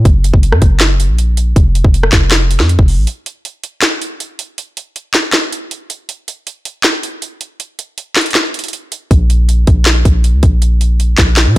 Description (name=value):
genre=hip hop, trap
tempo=159 BPM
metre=4/4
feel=half-time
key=unclear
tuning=A4 = 440 Hz
part: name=long sustained 808-style bass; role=bass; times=0.0-3.1, 9.1-11.6 s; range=F1 to Bb2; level=-11 LUFS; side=equal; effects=none
part: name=trap drum kit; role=drums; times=0.1-11.6 s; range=handclaps, hi-hat, kick drum, rim click, snare drum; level=-12 LUFS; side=equal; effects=none
room=digital ambience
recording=blown-out, overdriven recording, overdrive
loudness=-10 LUFS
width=side -17 dB against mid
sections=0.0-3.1 A section; 3.1-11.6 B section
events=break 3.1-9.1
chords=none